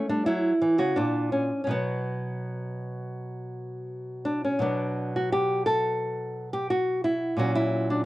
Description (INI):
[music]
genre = classical, baroque-style dance for nylon-string guitar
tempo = 81-90 BPM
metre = 4/4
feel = rubato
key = B minor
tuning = A4 = 442 Hz
[part]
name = nylon-string guitar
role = solo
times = 0.0-8.1 s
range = A#2 to A4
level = -25 LUFS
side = equal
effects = none
[sound]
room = light reverb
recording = worn, warbling old tape, cassette tape, warbly pitch drift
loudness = -24 LUFS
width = side -17 dB against mid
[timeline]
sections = 0.0-4.6 A section; 4.6-8.1 B section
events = none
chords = 0.3 F#7; 1.7 B5; 7.4 F#/A#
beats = 0.26 0.97 | 1.71 2.44 3.17 3.90 | 4.62 5.32 6.00 6.69 | 7.38 8.04